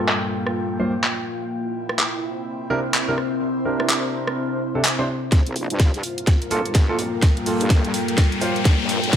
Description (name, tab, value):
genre	bass house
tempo	126 BPM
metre	4/4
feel	swing 61% on 16ths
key	G dorian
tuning	A4 = 440 Hz
part	deep dark ambient pad	sustained chords	0.0-9.2 s	G3 to A5	-28 LUFS	left 2 dB	chorus, built-in reverb, sidechain pumping
part	warm grand piano	stabs	0.0-8.5 s	G2 to C5	-26 LUFS	right 2 dB	sidechain pumping, low-pass filter, digital delay
part	airy breathy pad	texture	0.0-9.2 s	Bb3 to G5	-29 LUFS	equal	chorus, sidechain pumping
part	garage drum kit	drums	0.1-9.2 s	handclaps, hi-hat, rim click, snare drum	-23 LUFS	equal	overdrive, high-pass filter on hats, low-pass filter on hats, high-pass filter on cymbals, low-pass filter on cymbals, high-pass filter on snare, low-pass filter on snare
part	wobble bass	bass	5.3-9.2 s	G1 to G2	-28 LUFS	equal	chorus, overdrive, sidechain pumping, high-pass filter
part	electronic kick drum	drums	5.3-9.2 s	none	-16 LUFS	equal	none
part	warm soul drum kit	drums	5.3-9.2 s	hi-hat, snare drum	-36 LUFS	right 2 dB	none
part	riser	sound effects	6.9-9.2 s	none	-29 LUFS	left 4 dB	none
room	light reverb, small room ambience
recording	none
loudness	-19 LUFS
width	side -9 dB against mid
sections	0.0-5.3 A section; 5.3-9.2 B section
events	build-up 5.3-9.2; drum fill 5.3-9.2; riser 6.9-9.2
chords	0.0 Gm7; 1.5 C7; 5.3 Gm7